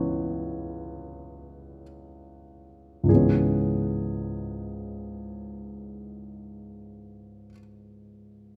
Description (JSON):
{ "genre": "classical, lyrical solo piano", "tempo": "free time", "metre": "none", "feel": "none", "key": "C# minor", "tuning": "A4 = 440 Hz", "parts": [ { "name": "dark grand piano", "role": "solo", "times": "0.0-8.6 s", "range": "C#2 to C#5", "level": "-28 LUFS", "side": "equal", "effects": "none" } ], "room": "moderate scoring stage reverb, RT60 1.6 s", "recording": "none", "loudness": "-27 LUFS", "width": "mono", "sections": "0.0-3.1 A section; 3.1-8.0 B section", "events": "slowing down 0.0-3.1", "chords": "0.0 C#m7", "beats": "free time" }